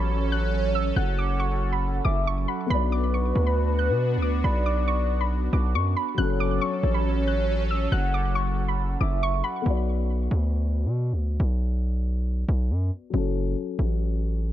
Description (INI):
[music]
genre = hip hop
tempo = 138 BPM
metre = 4/4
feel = half-time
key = B minor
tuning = A4 = 440 Hz
[part]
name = soft round pluck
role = melody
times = 0.0-9.6 s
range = B5 to F#6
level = -31 LUFS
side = right 1 dB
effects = chorus, ping-pong delay
[part]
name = soft octave-layered synth lead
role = second line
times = 0.0-9.6 s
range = B4 to F#5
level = -31 LUFS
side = right 1 dB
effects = chorus, phaser, ping-pong delay
[part]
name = dark concert grand piano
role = accompaniment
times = 0.0-14.5 s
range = F#3 to D5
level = -34 LUFS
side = left 8 dB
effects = low-pass filter
[part]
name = sweeping resonant pad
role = sustained chords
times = 0.0-9.6 s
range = F#3 to A4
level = -33 LUFS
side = right 1 dB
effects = chorus
[part]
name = distorted 808-style bass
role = bass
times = 0.0-14.5 s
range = F#1 to B2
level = -24 LUFS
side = equal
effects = distortion
[sound]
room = digital ambience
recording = dark, warm production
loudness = -22 LUFS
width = side -12 dB against mid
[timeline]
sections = 0.0-9.7 A section; 9.7-14.5 B section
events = filter sweep on grand piano 9.7-14.5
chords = 0.0 F#m; 2.7 Bm; 6.2 F#m; 9.7 Bm; 13.1 F#m